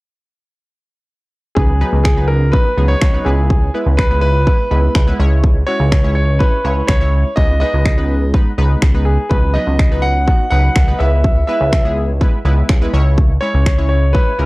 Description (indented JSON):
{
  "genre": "dance-pop",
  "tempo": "124 BPM",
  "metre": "4/4",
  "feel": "straight",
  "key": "C# minor",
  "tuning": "A4 = 439 Hz",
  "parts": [
    { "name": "clear concert grand piano", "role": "melody", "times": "1.6-14.5 s", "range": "G#4 to F#5", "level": "-20 LUFS", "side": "equal", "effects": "tape echo" },
    { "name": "funky polysynth comp", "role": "accompaniment", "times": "1.6-14.5 s", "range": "F#3 to C#5", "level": "-23 LUFS", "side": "equal", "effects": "chorus, sidechain pumping" },
    { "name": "chorused synth bass", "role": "bass", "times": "1.6-14.5 s", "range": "C#2", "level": "-14 LUFS", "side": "equal", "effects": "sidechain pumping" },
    { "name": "house drum kit", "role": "drums", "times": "1.6-14.3 s", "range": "finger snaps, kick drum", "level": "-14 LUFS", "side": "equal", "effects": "none" }
  ],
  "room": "little or no reverb",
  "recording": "dry, gritty hardware recording, cassette tape",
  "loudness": "-12 LUFS",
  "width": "side -22 dB against mid",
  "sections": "1.6-14.5 A section",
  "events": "none",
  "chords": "1.6 B/C#; 3.3 E/C#; 5.2 C#m; 7.4 G#m/C#; 9.3 B/C#; 11.0 E/C#; 12.9 C#m",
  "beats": "| 1.56 2.05 2.53 3.02 | 3.50 3.98 4.47 4.95 | 5.44 5.92 6.40 6.89 | 7.37 7.86 8.34 8.82 | 9.31 9.79 10.28 10.76 | 11.24 11.73 12.21 12.69 | 13.18 13.66 14.15"
}